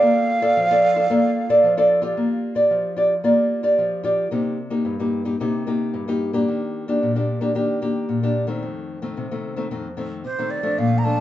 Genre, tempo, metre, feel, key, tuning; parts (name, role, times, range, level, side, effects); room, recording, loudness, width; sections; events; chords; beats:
samba; 111 BPM; 4/4; straight; Bb major; A4 = 439 Hz
wooden flute; melody; 0.0-1.9, 10.3-11.2 s; C5 to Bb5; -22 LUFS; right 3 dB; tape echo
nylon-string guitar; accompaniment; 0.0-11.2 s; F2 to D5; -19 LUFS; equal
wet large studio reverb, RT60 0.9 s; band playing live in one room, nothing above 7.9 kHz; -18 LUFS; side -13 dB against mid
0.0-2.2 A section; 2.2-10.8 B section
0.0 Bbmaj7; 2.2 Bb6; 4.3 Cm7; 6.5 Ebmaj7; 8.6 F7
| 0.02 0.55 1.09 1.63 | 2.17 2.70 3.24 3.78 | 4.32 4.86 5.40 5.94 | 6.47 7.01 7.55 8.09 | 8.63 9.17 9.71 10.25 | 10.78